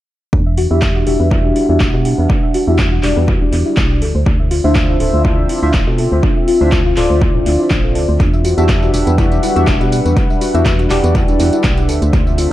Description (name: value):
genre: deep house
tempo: 122 BPM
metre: 4/4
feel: swing 54% on 16ths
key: E minor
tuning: A4 = 441 Hz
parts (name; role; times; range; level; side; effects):
- soft round pluck; arpeggios; 0.3-12.5 s; D4 to E5; -21 LUFS; left 3 dB; wide subtle chorus, sidechain pumping, tape echo
- organ-like FM bass; bass; 0.3-12.5 s; D1 to B2; -16 LUFS; equal; tube saturation
- electronic kick drum; drums; 0.3-12.2 s; none; -15 LUFS; equal; overdrive, vintage 12-bit sampler grit, small room ambience
- warbly tape-like pad; texture; 0.3-12.5 s; F3 to F#5; -21 LUFS; right 1 dB; chorus, built-in reverb, sidechain pumping
- house drum kit; drums; 0.6-12.5 s; handclaps, hi-hat, tambourine; -25 LUFS; equal; vintage 12-bit sampler grit, small room ambience, dub echo
- chorused polysynth; stabs; 0.7-11.9 s; D4 to E5; -19 LUFS; equal; cassette tape, sidechain pumping, dub echo
- warm analog pad; sustained chords; 8.2-12.5 s; G3 to F#5; -23 LUFS; equal; chorus, sidechain pumping
room: light reverb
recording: echo-heavy mix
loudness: -11 LUFS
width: side -14 dB against mid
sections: 0.3-12.5 A section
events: filter sweep on analog polysynth 0.3-12.5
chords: 0.3 Em9; 4.0 Dm9; 8.2 Em9; 11.9 Dm9